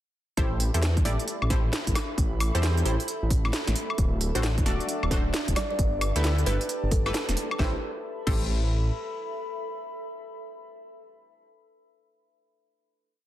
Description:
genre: UK garage, two-step garage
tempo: 133 BPM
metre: 4/4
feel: swing 64% on 16ths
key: A minor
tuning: A4 = 442 Hz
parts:
  - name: punchy chord stab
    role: stabs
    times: 0.4-11.5 s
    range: D4 to D5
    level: -33 LUFS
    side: equal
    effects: chorus, tape echo
  - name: dark detuned saw bass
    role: bass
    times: 0.4-8.9 s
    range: D1 to E2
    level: -26 LUFS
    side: equal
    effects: none
  - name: electronic kick drum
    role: drums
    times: 0.4-8.4 s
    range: none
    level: -26 LUFS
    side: equal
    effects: none
  - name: garage drum kit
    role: drums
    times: 0.4-8.4 s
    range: crash cymbal, hi-hat, snare drum, woodblock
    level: -31 LUFS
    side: equal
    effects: none
  - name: warbly tape-like pad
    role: texture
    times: 0.7-10.9 s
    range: D4 to B5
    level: -38 LUFS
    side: left 1 dB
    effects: chorus, built-in reverb, sidechain pumping
  - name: warm analog pad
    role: sustained chords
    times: 4.5-7.6 s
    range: D4 to D5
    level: -40 LUFS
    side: right 4 dB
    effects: none
  - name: kalimba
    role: melody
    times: 5.6-7.6 s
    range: A4 to D5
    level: -35 LUFS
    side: right 1 dB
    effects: tape echo
room: light reverb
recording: dense, heavily limited modern master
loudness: -24 LUFS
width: side -13 dB against mid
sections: 0.4-7.6 drop; 7.6-11.2 final chord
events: drop 0.4-7.6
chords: 0.4 Am7; 4.0 D7; 5.6 G69; 7.6 Am7

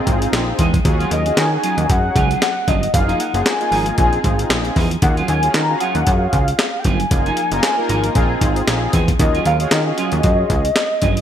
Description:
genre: early-eighties boogie funk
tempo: 115 BPM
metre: 4/4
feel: swing 56% on 16ths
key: Eb dorian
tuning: A4 = 440 Hz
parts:
  - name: warm velvety synth lead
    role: melody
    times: 0.0-11.2 s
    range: Eb5 to Bb5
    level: -21 LUFS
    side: left 1 dB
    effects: chorus
  - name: mellow synth brass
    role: accompaniment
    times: 0.0-10.6 s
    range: Bb3 to Bb4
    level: -22 LUFS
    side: left 1 dB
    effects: chorus
  - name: plucky analog bass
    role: bass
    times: 0.1-11.2 s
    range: Gb1 to Eb3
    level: -20 LUFS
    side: equal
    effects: none
  - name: breakbeat sampler-style drum kit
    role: drums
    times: 0.1-11.2 s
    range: handclaps, hi-hat, kick drum, snare drum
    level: -19 LUFS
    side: equal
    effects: none
  - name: clean electric guitar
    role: riff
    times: 0.2-11.2 s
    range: F3 to Bb4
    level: -26 LUFS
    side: right 6 dB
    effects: analog chorus
room: moderate lush hall reverb, RT60 1.6 s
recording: bright 1980s-style digital production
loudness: -14 LUFS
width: side -9 dB against mid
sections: 0.0-11.2 A section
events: none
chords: 0.0 Bb9sus4; 0.8 Ebm11; 2.9 Gbmaj13; 4.0 Bb9sus4; 5.0 Ebm11; 7.1 Gbmaj13; 8.2 Bb9sus4; 9.2 Ebm11

